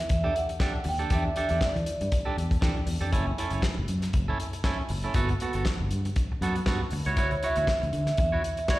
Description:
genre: disco.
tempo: 119 BPM.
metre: 4/4.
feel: swing 56% on 16ths.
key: E dorian.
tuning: A4 = 439 Hz.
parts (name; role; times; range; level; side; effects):
vibraphone with soft mallets; melody; 0.0-2.1, 7.2-8.8 s; C#5 to G5; -29 LUFS; right 1 dB; slapback echo.
twangy electric guitar; accompaniment; 0.0-8.8 s; B3 to C#5; -32 LUFS; right 3 dB; slapback echo.
fingered electric bass; bass; 0.0-8.4 s; F#1 to E3; -29 LUFS; equal; none.
warm soul drum kit; drums; 0.1-8.8 s; hi-hat, kick drum, snare drum; -29 LUFS; equal; none.
room: studio reverb.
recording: live gig heard through the venue's PA, recital hall reverb.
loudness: -25 LUFS.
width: side -17 dB against mid.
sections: 0.0-8.8 A section.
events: none.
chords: 0.0 Em11; 3.1 F#m7; 5.2 Gmaj9; 6.9 Dmaj9.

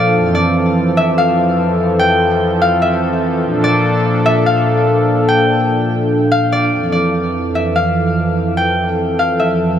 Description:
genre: hip hop.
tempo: 146 BPM.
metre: 4/4.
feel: half-time.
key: F major.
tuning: A4 = 440 Hz.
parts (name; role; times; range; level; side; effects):
concert harp; melody; 0.0-9.8 s; D5 to G5; -16 LUFS; left 2 dB; tape echo.
warm analog pad; sustained chords; 0.0-9.8 s; F2 to A4; -14 LUFS; equal; chorus.
room: moderate huge ambient reverb, RT60 8.6 s.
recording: none.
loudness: -12 LUFS.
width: side -9 dB against mid.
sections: 0.0-6.7 A section; 6.7-9.8 B section.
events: none.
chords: 0.1 Fmaj7; 3.4 Bbmaj7; 6.7 Fmaj7.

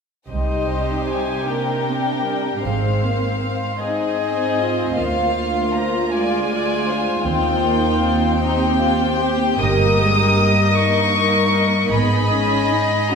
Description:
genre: classical, slow romantic movement for symphony orchestra.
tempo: 52 BPM (dotted quarters).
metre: 6/8.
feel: rubato.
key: C minor.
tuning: A4 = 441 Hz.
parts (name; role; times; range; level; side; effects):
warm chamber violin section; melody; 0.3-13.2 s; Eb5 to D#6; -22 LUFS; left 4 dB; none.
warm symphonic violin section; second line; 0.3-13.2 s; Eb4 to D#5; -22 LUFS; left 3 dB; none.
dark symphonic viola section; accompaniment; 0.3-13.2 s; G3 to G4; -23 LUFS; right 1 dB; none.
warm symphonic cello section; bass; 0.3-13.2 s; D2 to C3; -23 LUFS; right 2 dB; none.
warm symphonic double bass section; bass; 0.3-12.7 s; G1 to Eb2; -25 LUFS; right 3 dB; none.
room: wet scoring stage reverb, RT60 1.7 s.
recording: heard from further back in the room.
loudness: -16 LUFS.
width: side -6 dB against mid.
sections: 0.3-13.2 A section.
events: none.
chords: 0.3 Cm; 2.6 Ab; 5.0 Dm7b5; 7.2 Cm/Eb; 9.6 D#/G; 11.9 G#m.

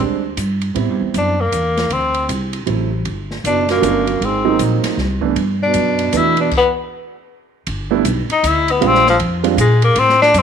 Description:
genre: jazz, small-group swing and bop.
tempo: 156 BPM.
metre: 3/4.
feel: swing 63% on 8ths.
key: G major.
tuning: A4 = 440 Hz.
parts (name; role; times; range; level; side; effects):
warm baby grand piano; accompaniment; 0.0-9.6 s; E3 to F4; -19 LUFS; right 11 dB; none.
upright bass; bass; 0.0-10.4 s; F#1 to Bb2; -20 LUFS; equal; none.
open jazz drum kit; drums; 0.4-10.4 s; crash cymbal, hi-hat, kick drum, ride cymbal, snare drum; -26 LUFS; right 2 dB; none.
clear tenor saxophone; melody; 1.2-10.4 s; F3 to E4; -15 LUFS; left 3 dB; none.
warm baritone saxophone; second line; 3.5-6.5 s; F#2 to B2; -21 LUFS; right 11 dB; none.
room: moderate echo chamber reverb, RT60 1.4 s, small room ambience.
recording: 1960s-style stereo.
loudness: -14 LUFS.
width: side -7 dB against mid.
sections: 0.0-7.7 A section; 7.7-10.4 B section.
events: stop 6.5-7.7; tenor saxophone solo 7.7-10.4.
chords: 0.0 Bb13 (rootless); 0.8 Am7 (rootless); 1.9 D7; 3.1 Gmaj7; 4.2 Ab9; 5.4 G6; 8.8 Bb13.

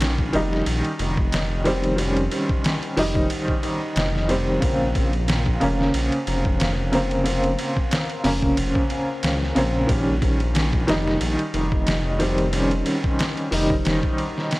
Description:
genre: trip hop.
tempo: 91 BPM.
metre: 4/4.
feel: swing 55% on 16ths.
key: unclear.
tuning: A4 = 440 Hz.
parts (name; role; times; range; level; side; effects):
clear upright piano; accompaniment; 0.0-14.6 s; Db3 to Eb4; -22 LUFS; equal; tremolo, vintage 12-bit sampler grit, tape echo.
dark detuned saw bass; bass; 0.0-14.0 s; F1 to Db2; -24 LUFS; equal; none.
trip hop sampler-style drum kit; drums; 0.0-14.6 s; hi-hat, kick drum, ride cymbal, snare drum; -25 LUFS; equal; overdrive.
room: digital ambience.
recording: dry, gritty hardware recording.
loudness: -19 LUFS.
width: side -20 dB against mid.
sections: 0.0-14.6 A section.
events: none.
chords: 0.0 Eb7; 4.6 Bbmadd9; 9.9 Eb7.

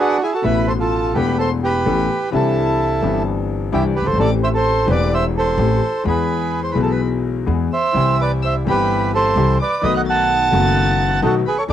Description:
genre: tango.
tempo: 128 BPM.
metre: 4/4.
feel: rubato.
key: A minor.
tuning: A4 = 442 Hz.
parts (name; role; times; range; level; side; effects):
bandoneon; melody; 0.0-11.7 s; D4 to A5; -18 LUFS; right 3 dB; none.
warm violin; second line; 0.0-11.7 s; F#5 to A6; -28 LUFS; left 7 dB; cassette tape.
warm concert grand piano; accompaniment; 0.4-11.7 s; E1 to A4; -20 LUFS; left 7 dB; cassette tape.
upright bass; bass; 0.4-11.7 s; E1 to E2; -21 LUFS; right 2 dB; none.
bandoneon; stabs; 8.0-11.7 s; G3 to E4; -32 LUFS; right 8 dB; cassette tape.
room: moderate booth ambience, RT60 0.3 s.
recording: home recording on cassette.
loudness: -15 LUFS.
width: side -10 dB against mid.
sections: 0.5-11.7 A section.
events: band accent 0.0-0.5.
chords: 0.5 Asus2; 2.3 Cadd9; 4.2 Am7; 6.1 E; 8.0 C; 9.8 B7.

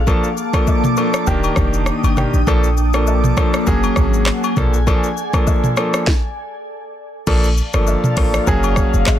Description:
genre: afrobeats.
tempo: 100 BPM.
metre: 4/4.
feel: swing 55% on 16ths.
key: Bb major.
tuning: A4 = 440 Hz.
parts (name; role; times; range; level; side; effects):
glassy FM pad; sustained chords; 0.0-9.2 s; Bb3 to Eb6; -23 LUFS; left 2 dB; ensemble chorus, built-in reverb.
clean 808-style bass; bass; 0.0-9.2 s; Eb1 to Bb1; -17 LUFS; equal; none.
clear baby grand piano; accompaniment; 0.1-9.2 s; Eb3 to A4; -20 LUFS; equal; none.
afro-pop drum kit; drums; 0.1-9.2 s; crash cymbal, handclaps, hi-hat, kick drum, rim click, shaker, snare drum, toms; -18 LUFS; equal; none.
agogo bells and woodblock; percussion; 0.1-9.2 s; none; -27 LUFS; left 9 dB; none.
room: little or no reverb.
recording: dense, heavily limited modern master.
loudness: -14 LUFS.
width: side -11 dB against mid.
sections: 0.0-7.3 A section; 7.3-9.2 B section.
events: stop 6.1-7.3.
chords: 0.0 Bbmaj7; 1.3 Ebmaj7; 2.5 Bbmaj7; 3.7 Gbadd9; 4.6 Bbmaj7; 6.1 N.C.; 7.3 Bbmaj7; 8.5 Gbadd9.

